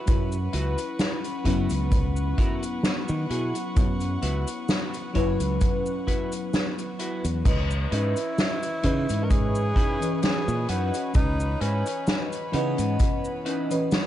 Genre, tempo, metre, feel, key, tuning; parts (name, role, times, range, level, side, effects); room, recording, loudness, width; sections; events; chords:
vaporwave; 65 BPM; 4/4; swing 54% on 16ths; C# minor; A4 = 439 Hz
rich chamber string section; sustained chords; 0.0-14.1 s; B4 to C#6; -37 LUFS; left 1 dB
clean electric guitar; riff; 0.0-13.7 s; C#4 to C#5; -36 LUFS; right 1 dB; analog chorus, analog delay
FM electric piano with soft pad layer; accompaniment; 0.1-14.1 s; E3 to D#5; -30 LUFS; left 1 dB; lush chorus, analog delay
modern bright fingered electric bass; bass; 0.1-13.0 s; F#1 to D#3; -26 LUFS; equal
kick drum; drums; 0.1-13.2 s; -23 LUFS; equal
soft-mallet drum kit; drums; 0.1-14.1 s; cabasa, crash cymbal, hi-hat, snare drum; -29 LUFS; equal; gated reverb
breathy tenor saxophone; melody; 7.9-13.9 s; B3 to A#4; -31 LUFS; right 1 dB; vintage 12-bit sampler grit, tape echo
studio reverb; cassette tape, nothing above 10.6 kHz; -23 LUFS; side -12 dB against mid
0.0-7.5 A section; 7.5-14.1 B section
0.0 F#7sus4; 7.5 C#m9